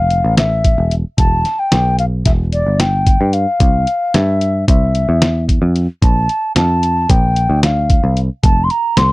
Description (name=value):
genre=progressive instrumental, band music in an uneven meter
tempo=223 BPM (eighths)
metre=9/8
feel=straight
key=Bb lydian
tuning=A4 = 439 Hz
part: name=mellow baroque flute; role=melody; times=0.0-9.1 s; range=D5 to C6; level=-16 LUFS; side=left 1 dB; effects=none
part: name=picked electric bass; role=bass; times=0.0-9.1 s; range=E1 to G2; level=-15 LUFS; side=equal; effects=none
part: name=lo-fi sampler-style drum kit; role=drums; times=0.1-9.1 s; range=hi-hat, kick drum, snare drum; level=-14 LUFS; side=equal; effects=none
room=little or no reverb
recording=dry, close 1970s-style studio recording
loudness=-12 LUFS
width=side -20 dB against mid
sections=0.0-9.1 A section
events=none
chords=0.0 Fmaj7; 1.2 Em; 3.6 C; 6.0 Bbmaj7; 8.4 F